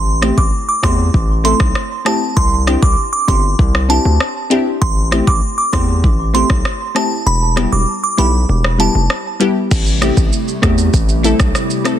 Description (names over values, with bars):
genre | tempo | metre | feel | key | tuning
dancehall | 98 BPM | 4/4 | straight | A minor | A4 = 438 Hz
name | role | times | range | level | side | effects
glassy synth bell | melody | 0.0-8.9 s | A5 to D6 | -18 LUFS | right 2 dB | chorus, tape echo
hard-hitting 808-style bass | bass | 0.0-11.5 s | E1 to E2 | -16 LUFS | equal | none
glassy wavetable pluck | accompaniment | 0.2-12.0 s | G3 to A4 | -19 LUFS | left 2 dB | chorus
afro-pop drum kit | drums | 0.2-12.0 s | crash cymbal, hi-hat, kick drum, rim click, shaker | -16 LUFS | equal | vintage 12-bit sampler grit, soft clipping on snare
hollow soft pad | sustained chords | 9.7-12.0 s | C3 to G4 | -21 LUFS | right 1 dB | ensemble chorus, sidechain pumping
room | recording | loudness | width
little or no reverb | dense, heavily limited modern master | -12 LUFS | side -10 dB against mid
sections
0.0-9.7 A section; 9.7-12.0 B section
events
kick muted 7.3-9.7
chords
0.0 Am7; 2.4 Cadd9; 4.8 Am7; 7.3 Em; 9.7 Am7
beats
0.53 1.14 1.75 | 2.37 2.98 3.59 4.20 | 4.82 5.43 6.04 6.65 | 7.26 7.88 8.49 9.10 | 9.71 10.33 10.94 11.55